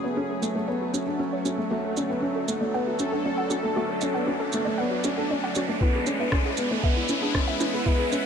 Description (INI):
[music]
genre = piano and strings electronica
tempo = 117 BPM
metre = 4/4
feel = straight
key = unclear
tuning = A4 = 440 Hz
[part]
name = lush unison pad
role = sustained chords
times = 0.0-8.3 s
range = F#3 to B4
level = -30 LUFS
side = equal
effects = chorus, sidechain pumping, shimmer reverb
[part]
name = warbly dusty pluck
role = arpeggios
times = 0.0-8.2 s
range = E4 to F#5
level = -33 LUFS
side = right 1 dB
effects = chorus, sidechain pumping, ping-pong delay, shimmer reverb
[part]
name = felt-muted upright piano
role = riff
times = 0.0-8.2 s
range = A3 to D4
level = -27 LUFS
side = equal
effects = ping-pong delay, shimmer reverb
[part]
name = dark detuned saw bass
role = bass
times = 0.0-8.3 s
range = F#1 to E2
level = -45 LUFS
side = left 1 dB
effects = none
[part]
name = riser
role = sound effects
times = 0.7-8.3 s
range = none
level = -34 LUFS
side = left 1 dB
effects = none
[part]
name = organic electronic drum kit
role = drums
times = 0.4-8.2 s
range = rim click, shaker, toms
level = -34 LUFS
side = right 3 dB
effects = high-pass filter on perc, high-pass filter on snare, high-pass filter on toms, high-pass filter on room
[part]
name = electronic kick drum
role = drums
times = 5.8-8.0 s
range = none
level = -24 LUFS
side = equal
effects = none
[sound]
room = moderate huge ambient reverb, RT60 4.7 s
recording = none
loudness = -23 LUFS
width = side -7 dB against mid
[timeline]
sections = 0.0-8.3 A section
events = build-up 0.0-8.3; filter sweep on synth arpeggio sound 0.0-8.3; riser 0.7-8.3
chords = 0.0 F#madd9; 1.7 D; 5.8 E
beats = 0.17 0.69 1.20 | 1.71 2.23 2.74 3.25 | 3.76 4.28 4.79 5.30 | 5.82 6.33 6.84 7.35 | 7.87